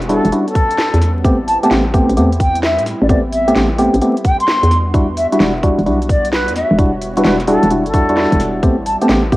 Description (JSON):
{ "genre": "UK garage, two-step garage", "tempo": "130 BPM", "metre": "4/4", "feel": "swing 67% on 16ths", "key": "A minor", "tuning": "A4 = 441 Hz", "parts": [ { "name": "warm analog pad", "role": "sustained chords", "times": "0.0-9.4 s", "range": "G3 to C#5", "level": "-26 LUFS", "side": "equal", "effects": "none" }, { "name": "hollow knocking FM bass", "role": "bass", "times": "0.0-9.4 s", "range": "E1 to A2", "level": "-17 LUFS", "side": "equal", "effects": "none" }, { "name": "garage drum kit", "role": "drums", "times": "0.0-9.4 s", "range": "hi-hat, snare drum", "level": "-23 LUFS", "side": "equal", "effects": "cassette tape" }, { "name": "baroque flute", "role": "melody", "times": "0.1-9.1 s", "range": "A4 to C6", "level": "-18 LUFS", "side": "equal", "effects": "tape echo" }, { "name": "percussive organ stab", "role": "stabs", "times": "0.1-9.4 s", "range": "G3 to G4", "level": "-15 LUFS", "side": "equal", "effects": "chorus, cassette tape, tape echo" }, { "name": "electronic kick drum", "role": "drums", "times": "0.6-9.4 s", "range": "none", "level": "-16 LUFS", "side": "equal", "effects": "cassette tape" } ], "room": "moderate spring reverb, RT60 1.2 s", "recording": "home recording on cassette, vinyl crackle", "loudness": "-12 LUFS", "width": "side -18 dB against mid", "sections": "0.0-9.4 A section", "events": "none", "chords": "0.0 Em9; 1.2 Am9; 4.7 Em9; 8.6 Am9" }